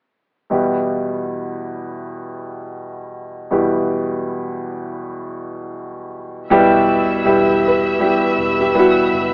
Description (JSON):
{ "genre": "pop", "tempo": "80 BPM", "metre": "4/4", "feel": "straight", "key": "E minor", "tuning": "A4 = 440 Hz", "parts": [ { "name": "warm baby grand piano", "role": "accompaniment", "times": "0.5-9.3 s", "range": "E2 to B4", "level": "-20 LUFS", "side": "equal", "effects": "none" }, { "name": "clear studio string section", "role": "sustained chords", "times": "6.5-9.3 s", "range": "B4 to E6", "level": "-23 LUFS", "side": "equal", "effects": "none" }, { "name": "vintage muted fingered electric bass", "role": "bass", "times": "6.5-9.3 s", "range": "E1 to F#1", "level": "-37 LUFS", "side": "equal", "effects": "none" }, { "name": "nylon-string guitar", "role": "melody", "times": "7.7-9.3 s", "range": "F#4 to B4", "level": "-20 LUFS", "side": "equal", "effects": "none" } ], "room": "light reverb", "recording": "rough home demo mix, AM radio sound", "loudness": "-17 LUFS", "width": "mono", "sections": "0.5-6.5 A section; 6.5-9.3 B section", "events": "none", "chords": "0.5 Em" }